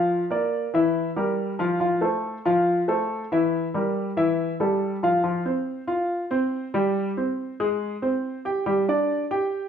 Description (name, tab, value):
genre	jazz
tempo	140 BPM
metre	4/4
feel	straight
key	F major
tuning	A4 = 440 Hz
part	warm baby grand piano	solo	0.0-9.7 s	E3 to G5	-22 LUFS	equal	none
room	wet large studio reverb, RT60 0.8 s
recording	band playing live in one room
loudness	-22 LUFS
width	side -8 dB against mid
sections	0.0-5.2 A section; 5.2-9.7 B section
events	none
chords	0.0 Bb; 0.9 Edim; 1.8 Fmaj7; 3.5 Edim; 4.4 A5; 5.2 Fsus2; 7.0 Abmaj7/G; 7.8 Ab; 8.7 G5